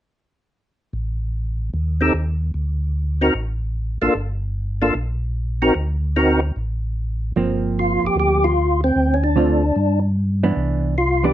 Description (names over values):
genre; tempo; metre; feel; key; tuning
jazz; 150 BPM; 4/4; swing 67% on 8ths; G minor from 7.4 s; A4 = 440 Hz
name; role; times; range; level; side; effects
mellow tonewheel organ; bass; 0.9-11.3 s; G1 to G2; -21 LUFS; equal; chorus vibrato, slow rotary speaker
percussive tonewheel organ; melody; 2.0-11.3 s; Bb3 to Bb4; -18 LUFS; equal; slow rotary speaker, overdrive, chorus vibrato
hollow-body jazz guitar; accompaniment; 7.4-11.3 s; D3 to F4; -21 LUFS; right 4 dB; none
room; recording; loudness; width
moderate studio reverb, RT60 0.6 s; none; -18 LUFS; side -12 dB against mid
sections
0.9-7.4 A section; 7.4-11.3 B section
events
none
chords
0.9 A(b5, no3); 2.5 D5; 4.2 Gm; 5.8 D7b9b13; 7.4 Gm7; 9.0 Dm7; 9.8 G6; 10.6 Cmaj9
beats
| 0.94 1.34 1.74 2.15 | 2.55 2.95 3.35 3.75 | 4.15 4.55 4.96 5.36 | 5.76 6.16 6.56 6.96 | 7.36 7.76 8.16 8.56 | 8.96 9.36 9.76 10.16 | 10.57 10.97